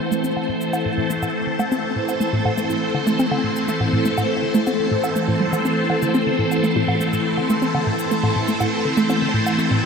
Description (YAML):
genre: ambient, sequencer-driven space music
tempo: 122 BPM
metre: 4/4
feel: straight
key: A minor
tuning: A4 = 438 Hz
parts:
  - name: phased string machine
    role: sustained chords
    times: 0.0-9.9 s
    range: E3 to C5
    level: -20 LUFS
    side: equal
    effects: ensemble chorus, phaser, shimmer reverb
  - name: hollow square pluck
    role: riff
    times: 0.0-9.9 s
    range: A2 to C4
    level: -23 LUFS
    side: equal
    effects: chorus, ping-pong delay
  - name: bubbling stepped-filter texture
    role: texture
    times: 1.0-9.9 s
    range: C4 to B5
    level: -40 LUFS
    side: left 1 dB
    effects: none
  - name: cabasa and woodblock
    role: percussion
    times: 0.1-9.7 s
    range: none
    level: -32 LUFS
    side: right 1 dB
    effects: ping-pong delay
room: wet huge ambient reverb, RT60 9.0 s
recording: none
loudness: -18 LUFS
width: side -6 dB against mid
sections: 0.0-9.9 A section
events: filter sweep on synth arpeggio sound 0.0-9.9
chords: 0.0 Am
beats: | 0.24 0.73 1.23 1.72 | 2.21 2.70 3.19 3.69 | 4.18 4.67 5.16 5.65 | 6.14 6.64 7.13 7.62 | 8.11 8.60 9.10 9.59